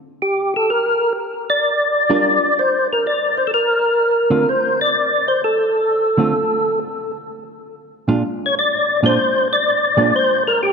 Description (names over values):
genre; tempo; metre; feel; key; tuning
jazz; 127 BPM; 4/4; swing 67% on 8ths; D minor; A4 = 441 Hz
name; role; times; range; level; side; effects
percussive tonewheel organ; melody; 0.2-10.7 s; G4 to D5; -15 LUFS; left 1 dB; slow rotary speaker, chorus vibrato, ping-pong delay
hollow-body jazz guitar; accompaniment; 2.1-10.1 s; Bb2 to Bb4; -21 LUFS; right 2 dB; none
room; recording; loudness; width
wet plate reverb, RT60 3.3 s; dreamy mix soaked in reverb; -15 LUFS; side -5 dB against mid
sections
0.0-10.7 A section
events
none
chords
0.0 N.C.; 0.7 Gm7; 4.5 Dm7; 8.2 Bb7